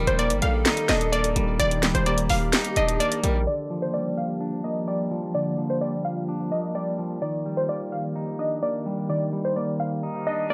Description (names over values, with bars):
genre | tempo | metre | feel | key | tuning
hip hop, trap | 128 BPM | 4/4 | half-time | G minor | A4 = 440 Hz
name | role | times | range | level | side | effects
glassy wavetable pluck | melody | 0.0-10.5 s | C5 to F5 | -30 LUFS | equal | chorus, tape echo
pan flute | second line | 0.0-3.5 s | G4 to Bb4 | -34 LUFS | equal | tape echo
clean electric guitar | accompaniment | 0.0-10.5 s | D3 to Eb4 | -31 LUFS | equal | none
glassy FM pad | sustained chords | 0.0-10.5 s | Eb3 to D5 | -36 LUFS | equal | ensemble chorus, built-in reverb
distorted 808-style bass | bass | 0.0-3.5 s | D1 to Bb1 | -28 LUFS | equal | distortion
trap drum kit | drums | 0.1-3.3 s | hi-hat, snare drum | -27 LUFS | equal | none
room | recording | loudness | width
light reverb | dry, gritty hardware recording, low-pass filter | -25 LUFS | mono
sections
0.0-3.5 A section; 3.5-10.5 B section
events
filter sweep 3.5-10.5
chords
0.0 Ebmaj7; 3.5 Gm7; 7.2 Ebmaj7